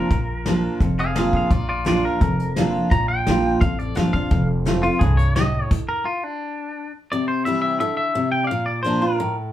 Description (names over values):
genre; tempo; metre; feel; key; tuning
honky-tonk and classic country; 172 BPM; 4/4; straight; Bb major; A4 = 440 Hz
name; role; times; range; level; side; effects
twangy electric guitar; melody; 0.0-9.3 s; D4 to Bb5; -24 LUFS; left 1 dB; none
picked steel-string acoustic guitar; accompaniment; 0.0-9.5 s; F2 to F4; -22 LUFS; equal; none
upright bass; bass; 0.1-5.6 s; F1 to C2; -24 LUFS; equal; none
soft brush drum kit; drums; 0.1-5.8 s; crash cymbal, hi-hat, kick drum, snare drum; -22 LUFS; equal; none
room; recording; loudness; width
wet studio reverb, RT60 0.5 s; band playing live in one room; -18 LUFS; side -12 dB against mid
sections
0.0-7.1 A section; 7.1-9.5 B section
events
clean electric guitar solo 0.0-7.1; stop 5.7-7.1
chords
0.0 Bb; 4.3 F; 5.7 N.C.; 7.1 C; 8.5 Bb